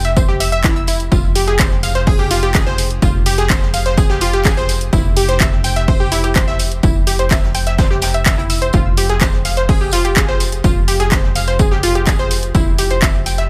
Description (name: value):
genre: melodic techno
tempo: 126 BPM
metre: 4/4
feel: straight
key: unclear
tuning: A4 = 440 Hz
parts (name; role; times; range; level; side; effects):
- analog pluck; arpeggios; 0.0-13.4 s; E4 to E6; -21 LUFS; equal; chorus, cassette tape, sidechain pumping, digital delay
- tight sequencer bass; bass; 0.0-13.5 s; F1; -21 LUFS; equal; tube saturation, sidechain pumping
- house drum kit; drums; 0.0-13.5 s; handclaps, hi-hat; -22 LUFS; equal; none
- jazz brush drum kit; drums; 0.0-13.5 s; hi-hat, snare drum, tambourine; -32 LUFS; equal; none
- electronic kick drum; drums; 0.2-13.1 s; none; -18 LUFS; equal; overdrive
room: little or no reverb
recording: none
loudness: -15 LUFS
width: mono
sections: 0.0-13.5 A section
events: none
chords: 0.0 N.C.; 4.9 C/F (rootless); 8.7 N.C.